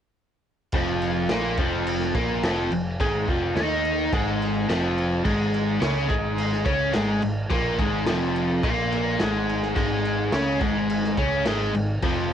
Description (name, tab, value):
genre	garage rock duo or trio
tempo	106 BPM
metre	4/4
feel	straight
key	F minor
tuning	A4 = 440 Hz
part	biting overdriven guitar	riff	0.7-12.3 s	F2 to Eb4	-23 LUFS	equal	none
part	growling picked electric bass	bass	0.7-12.3 s	F1 to Eb2	-30 LUFS	equal	overdrive
part	raw garage drum kit	drums	0.7-12.2 s	crash cymbal, kick drum, snare drum	-28 LUFS	equal	cassette tape
room	little or no reverb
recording	home recording on cassette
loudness	-21 LUFS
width	side -9 dB against mid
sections	0.7-12.3 A section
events	none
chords	0.7 Fm; 5.2 Ab5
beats	| 0.73 1.30 1.86 2.43 | 2.99 3.56 4.12 4.68 | 5.25 5.81 6.38 6.94 | 7.50 8.07 8.63 9.20 | 9.76 10.33 10.90 11.46 | 12.03